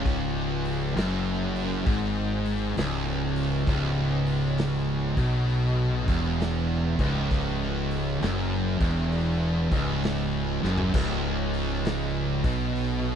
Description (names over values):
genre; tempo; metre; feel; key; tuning
stoner and doom metal; 66 BPM; 4/4; swing 65% on 8ths; C# minor; A4 = 440 Hz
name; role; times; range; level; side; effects
thick fuzz guitar; riff; 0.0-13.2 s; C#2 to B2; -30 LUFS; left 7 dB; distortion
thick fuzz guitar; riff; 0.0-13.2 s; C#2 to B2; -30 LUFS; right 9 dB; distortion
tight distorted guitar; riff; 0.0-13.2 s; C#2 to B2; -31 LUFS; left 1 dB; distortion
fuzz fingered electric bass; bass; 0.0-13.2 s; C#1 to B1; -30 LUFS; equal; overdrive
raw garage drum kit; drums; 0.1-13.0 s; crash cymbal, hi-hat, kick drum, snare drum, toms; -28 LUFS; equal; none
room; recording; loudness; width
little or no reverb; dry, close 1970s-style studio recording; -24 LUFS; side -8 dB against mid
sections
0.0-10.9 A section; 10.9-13.2 A section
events
drum fill 10.5-10.9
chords
0.0 C#m; 10.9 N.C.